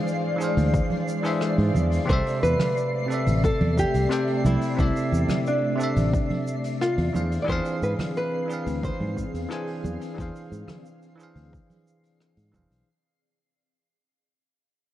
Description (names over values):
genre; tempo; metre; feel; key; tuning
sunset chillout; 89 BPM; 4/4; straight; unclear; A4 = 440 Hz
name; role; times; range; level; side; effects
bell-like tine electric piano; accompaniment; 0.0-12.9 s; C3 to G#5; -28 LUFS; equal; auto-pan
ethereal airy pad; sustained chords; 0.0-12.8 s; G#3 to F5; -32 LUFS; left 1 dB; ensemble chorus, built-in reverb, tremolo
twinkling granular texture; texture; 0.0-12.9 s; C7; -40 LUFS; equal; built-in reverb
jazz brush drum kit; drums; 0.1-12.8 s; hi-hat, rim click, shaker; -41 LUFS; left 1 dB; none
fingered electric bass; bass; 0.6-12.8 s; E1 to G#2; -24 LUFS; equal; none
congas; percussion; 0.6-12.7 s; none; -31 LUFS; right 3 dB; none
electronic kick drum; drums; 0.7-12.7 s; none; -26 LUFS; equal; overdrive
nylon-string guitar; melody; 2.1-12.2 s; D4 to D5; -28 LUFS; equal; tape echo
room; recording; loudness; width
light reverb; worn, warbling old tape, cassette tape, warbly pitch drift; -22 LUFS; side -13 dB against mid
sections
0.0-12.9 A section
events
fade-out 5.7-12.9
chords
0.0 E7b9b13; 2.1 C69; 7.1 E7b9b13